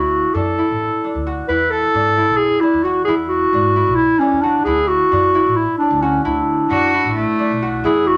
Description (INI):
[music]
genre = contemporary instrumental, chamber music in an uneven meter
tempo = 264 BPM (eighths)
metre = 7/8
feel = straight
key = D lydian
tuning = A4 = 438 Hz
[part]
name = mellow clarinet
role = melody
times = 0.0-8.2 s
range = C#4 to B4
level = -18 LUFS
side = equal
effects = none
[part]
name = concert harp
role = arpeggios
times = 0.0-8.2 s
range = D4 to F#4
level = -23 LUFS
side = equal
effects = none
[part]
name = upright bass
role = bass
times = 0.0-8.2 s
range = A1 to G#2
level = -28 LUFS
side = equal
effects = none
[part]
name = rich cello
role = second line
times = 6.7-7.8 s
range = A3 to F#4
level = -21 LUFS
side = equal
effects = none
[sound]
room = moderate studio reverb, RT60 0.7 s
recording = none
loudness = -17 LUFS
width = mono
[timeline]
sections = 0.0-7.8 A section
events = none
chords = 0.0 Dadd9; 1.5 E7; 4.7 Dadd9